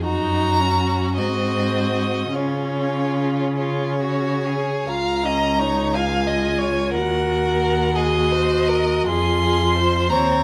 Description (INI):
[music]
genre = classical, slow romantic movement for string quartet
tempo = 43-60 BPM (dotted quarters)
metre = 6/8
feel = rubato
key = Db major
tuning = A4 = 440 Hz
[part]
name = clear violin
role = melody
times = 0.0-10.4 s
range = Db5 to C6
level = -26 LUFS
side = equal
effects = none
[part]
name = rich violin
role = second line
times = 0.0-10.4 s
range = F4 to F5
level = -28 LUFS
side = equal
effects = none
[part]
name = rich viola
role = accompaniment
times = 0.0-10.4 s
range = C4 to Gb4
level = -26 LUFS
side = equal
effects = none
[part]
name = rich cello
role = bass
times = 0.0-10.4 s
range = Db2 to Db3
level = -26 LUFS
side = equal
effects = none
[sound]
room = moderate recital hall reverb, RT60 1.5 s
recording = none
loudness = -20 LUFS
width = mono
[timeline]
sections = 0.0-4.9 A section; 4.9-10.4 B section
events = none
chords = 0.0 Ebm/Gb; 1.2 Ab7; 2.4 Db; 7.0 Ebm; 9.1 Db/F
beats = | 0.05 1.18 | 2.35 3.58 | 4.88 5.94 | 6.96 7.96 | 9.08 10.11